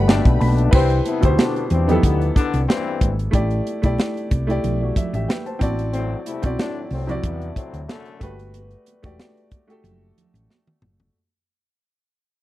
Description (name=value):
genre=lush 1970s-style soul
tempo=92 BPM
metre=4/4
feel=swing 54% on 16ths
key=unclear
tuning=A4 = 439 Hz
part: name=warm grand piano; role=accompaniment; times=0.0-11.2 s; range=B2 to B5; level=-24 LUFS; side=equal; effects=none
part: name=hollow-body short-scale fingered electric bass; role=bass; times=0.0-11.1 s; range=E1 to E2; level=-21 LUFS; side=equal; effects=none
part: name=brilliant trombone section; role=stabs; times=0.1-8.4 s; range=F#2 to E4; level=-26 LUFS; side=left 6 dB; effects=none
part: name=tight funk drum kit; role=drums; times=0.1-11.1 s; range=crash cymbal, hi-hat, kick drum, snare drum, toms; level=-18 LUFS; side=equal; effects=none
part: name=congas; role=percussion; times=0.1-11.0 s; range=none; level=-31 LUFS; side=right 5 dB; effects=none
part: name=vibraphone with soft mallets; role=texture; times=1.0-2.3, 7.2-9.6 s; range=B4 to D6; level=-41 LUFS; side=left 1 dB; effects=none
room=small room ambience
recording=dry, close 1970s-style studio recording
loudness=-18 LUFS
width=side -15 dB against mid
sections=0.7-11.1 A section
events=grand piano fill 0.0-0.7, 4.6-5.9; band accent 0.0-0.7; fade-out 0.7-11.1; drum fill 10.5-11.1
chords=0.0 Gmaj9; 0.7 Cmaj7; 3.3 A7sus4; 8.2 Gmaj9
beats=0.08 | 0.73 1.38 2.03 2.68 | 3.33 3.98 4.63 5.28 | 5.93 6.58 7.24 7.89 | 8.54 9.19 9.84 10.49